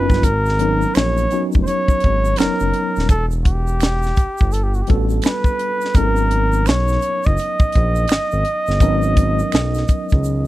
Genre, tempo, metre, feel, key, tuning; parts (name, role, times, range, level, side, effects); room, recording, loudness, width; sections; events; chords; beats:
R&B, neo-soul; 84 BPM; 4/4; swing 62% on 16ths; A4 = 437 Hz
warm flugelhorn; melody; 0.0-10.5 s; F#4 to D#5; -21 LUFS; right 1 dB; slapback echo
tine electric piano; accompaniment; 0.0-10.5 s; F#3 to C#5; -24 LUFS; left 2 dB; overdrive, fast stereo tremolo
smooth synth bass; bass; 0.0-10.5 s; D#1 to C#2; -19 LUFS; equal
tight funk drum kit; drums; 0.1-10.2 s; hi-hat, kick drum, snare drum; -16 LUFS; equal
egg shaker and finger snaps; percussion; 0.1-10.4 s; -35 LUFS; right 14 dB
studio reverb; dry, close 1970s-style studio recording; -15 LUFS; side -16 dB against mid
0.2-10.5 A section
drum fill 10.2
0.2 G#m11; 3.1 Em11; 6.0 G#m11
| 0.24 0.95 1.66 2.38 | 3.09 3.81 4.52 5.24 | 5.95 6.66 7.38 8.09 | 8.81 9.52 10.24